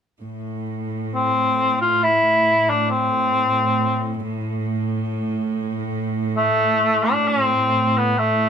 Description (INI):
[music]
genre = caucasian folk, Caucasian lament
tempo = 68 BPM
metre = 3/4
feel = uneven beats, rubato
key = A minor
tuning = A4 = 440 Hz
[part]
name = clear chamber cello section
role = drone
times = 0.2-8.5 s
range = A2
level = -24 LUFS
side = right 2 dB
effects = none
[part]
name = mellow cor anglais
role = melody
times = 1.1-8.5 s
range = A3 to F4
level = -17 LUFS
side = left 1 dB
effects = none
[sound]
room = light reverb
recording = close, detailed microphones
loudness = -18 LUFS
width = side -7 dB against mid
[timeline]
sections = 0.2-8.5 A section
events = none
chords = none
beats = | 0.22 1.13 2.02 | 2.90 3.77 4.62 | 5.49 6.36 7.26 | 8.17